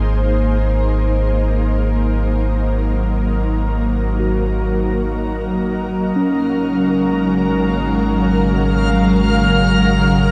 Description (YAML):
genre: ambient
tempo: free time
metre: none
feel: none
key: Ab mixolydian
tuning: A4 = 443 Hz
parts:
  - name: ethereal airy pad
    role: sustained chords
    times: 0.0-10.3 s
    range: Db3 to C5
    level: -21 LUFS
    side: equal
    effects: ensemble chorus, built-in reverb
  - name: mellow tine electric piano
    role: arpeggios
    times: 0.0-10.3 s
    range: Gb3 to Gb4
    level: -22 LUFS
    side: equal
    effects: tape echo
  - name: warm sub bass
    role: bass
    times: 0.0-10.3 s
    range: Ab1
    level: -22 LUFS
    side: equal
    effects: tube saturation
  - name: backwards swelling texture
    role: texture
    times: 6.8-10.3 s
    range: F5 to F6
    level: -26 LUFS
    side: equal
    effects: built-in reverb
room: moderate shimmer reverb, RT60 6.5 s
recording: cassette tape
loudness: -17 LUFS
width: mono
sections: 0.0-10.3 A section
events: fade-in on ambient pad 0.0-10.3; fade-in on tine electric piano 0.0-10.3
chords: 0.0 Ab7; 6.2 Ebmadd9/Ab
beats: free time